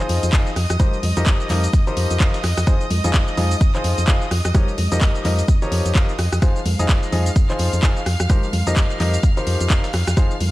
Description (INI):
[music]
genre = piano house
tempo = 128 BPM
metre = 4/4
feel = swing 59% on 16ths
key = F minor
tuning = A4 = 440 Hz
[part]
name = clear studio violin section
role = sustained chords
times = 0.0-10.5 s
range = Eb5 to F6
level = -30 LUFS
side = right 2 dB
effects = sidechain pumping
[part]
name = clear grand piano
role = riff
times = 0.0-10.3 s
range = F3 to F5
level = -25 LUFS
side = left 1 dB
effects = sidechain pumping, digital delay
[part]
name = dusty soul sampler-style drum kit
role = drums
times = 0.0-10.5 s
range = hi-hat, snare drum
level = -38 LUFS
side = right 1 dB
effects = none
[part]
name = house drum kit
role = drums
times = 0.0-10.5 s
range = handclaps, hi-hat, rim click, shaker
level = -26 LUFS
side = left 1 dB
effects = overdrive, studio reverb
[part]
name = solid FM bass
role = bass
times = 0.1-10.5 s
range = F1 to F2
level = -21 LUFS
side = equal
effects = sidechain pumping
[part]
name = tambourine and congas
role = percussion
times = 0.1-10.5 s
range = none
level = -32 LUFS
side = right 1 dB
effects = none
[part]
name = electronic kick drum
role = drums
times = 0.3-10.3 s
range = none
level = -17 LUFS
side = equal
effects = overdrive, studio reverb
[sound]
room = digital ambience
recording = dark, warm production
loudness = -16 LUFS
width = side -17 dB against mid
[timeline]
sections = 0.0-10.5 A section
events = none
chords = 0.0 Fm7; 0.6 Cm7/F; 2.4 Fm7; 4.3 Eb7/F; 6.4 Fm7; 8.1 Cm7/F; 9.9 Fm7